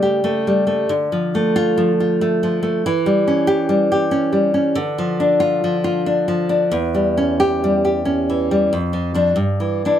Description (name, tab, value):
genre	romantic piece for solo classical guitar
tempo	91 BPM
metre	3/4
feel	rubato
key	D minor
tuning	A4 = 442 Hz
part	nylon-string guitar	solo	0.0-10.0 s	E2 to G4	-16 LUFS	equal	none
room	light reverb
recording	none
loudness	-16 LUFS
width	side -10 dB against mid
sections	0.0-10.0 A section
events	none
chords	0.0 A7/C#; 0.9 Dm; 2.8 C#dim/E; 4.8 Dm; 6.7 Em6; 8.7 Dm/F; 9.4 Em7/G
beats	0.24 | 0.91 1.56 2.21 | 2.84 3.47 4.11 | 4.77 5.42 6.06 | 6.72 7.39 8.05 | 8.71 9.37